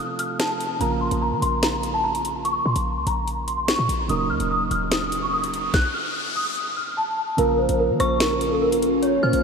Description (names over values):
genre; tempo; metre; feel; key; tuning
hip hop, drill; 146 BPM; 4/4; half-time; Bb harmonic minor; A4 = 440 Hz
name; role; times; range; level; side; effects
celesta; melody; 0.0-9.4 s; A4 to Gb6; -23 LUFS; equal; ensemble chorus, ping-pong delay
soft electric-piano-like synth keys; accompaniment; 0.0-9.4 s; C3 to Bb4; -29 LUFS; right 4 dB; chorus
drill drum kit; drums; 0.2-9.4 s; finger snaps, hi-hat, kick drum, rim click, snare drum; -27 LUFS; left 1 dB; none
short 808-style bass; bass; 0.8-9.4 s; Eb1 to F3; -28 LUFS; equal; none
riser; sound effects; 4.8-6.6 s; none; -34 LUFS; left 3 dB; none
glassy FM pad; sustained chords; 7.7-9.4 s; Bb3 to F4; -24 LUFS; left 3 dB; ensemble chorus, built-in reverb
dark detuned synth bell; second line; 8.0-9.4 s; Db6 to F6; -27 LUFS; equal; chorus, ping-pong delay
room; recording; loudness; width
wet huge ambient reverb, RT60 4.1 s; dreamy mix soaked in reverb; -20 LUFS; side -5 dB against mid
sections
0.0-7.4 A section; 7.4-9.4 B section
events
break 0.0-0.8; riser 4.8-7.4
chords
0.0 F; 0.8 Bbm; 4.1 Ebm7; 5.7 N.C.; 7.4 Bbm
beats
0.40 | 0.81 1.22 1.63 2.04 | 2.45 2.86 3.27 3.68 | 4.09 4.50 4.92 5.33 | 5.74 6.15 6.56 6.97 | 7.38 7.79 8.20 8.62 | 9.03